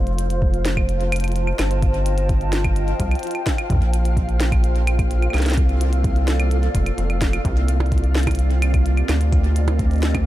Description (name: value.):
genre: IDM.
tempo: 128 BPM.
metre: 4/4.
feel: straight.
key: unclear.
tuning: A4 = 441 Hz.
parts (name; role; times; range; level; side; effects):
granular cloud pad; sustained chords; 0.0-10.3 s; Bb3 to A5; -27 LUFS; equal; built-in reverb, sidechain pumping.
rubbery square bass; bass; 0.0-10.3 s; F1 to D2; -19 LUFS; equal; none.
flickering grainy texture; texture; 0.0-10.3 s; F4 to F5; -33 LUFS; equal; built-in reverb.
glitchy drum kit; drums; 0.1-10.2 s; claves, hi-hat, percussion blips, snare drum; -28 LUFS; right 1 dB; overdrive, studio reverb, digital delay.
electronic kick drum; drums; 0.4-10.2 s; none; -21 LUFS; equal; overdrive, studio reverb.
room: little or no reverb.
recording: none.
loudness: -17 LUFS.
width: side -15 dB against mid.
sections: 0.0-10.3 A section.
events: none.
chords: 0.0 F7; 3.7 Bbmaj7; 7.5 Cm9.